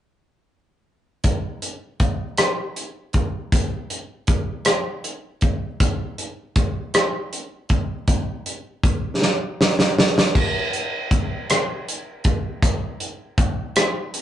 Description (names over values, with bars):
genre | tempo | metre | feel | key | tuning
pop | 53 BPM (dotted quarters) | 6/8 | straight | none | none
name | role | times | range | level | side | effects
modern studio drum kit | drums | 1.2-14.2 s | crash cymbal, hi-hat, kick drum, rim click, snare drum | -19 LUFS | equal | none
room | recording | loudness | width
moderate studio ambience, RT60 0.5 s | rough rehearsal-room recording, warm saturation, nothing above 10.4 kHz | -20 LUFS | side -11 dB against mid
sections
1.2-10.3 A section; 10.3-14.2 B section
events
drum fill 9.2-10.3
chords
none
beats
| 1.25 2.39 | 3.52 4.66 | 5.80 6.94 | 8.07 9.21 | 10.35 11.48 | 12.62 13.75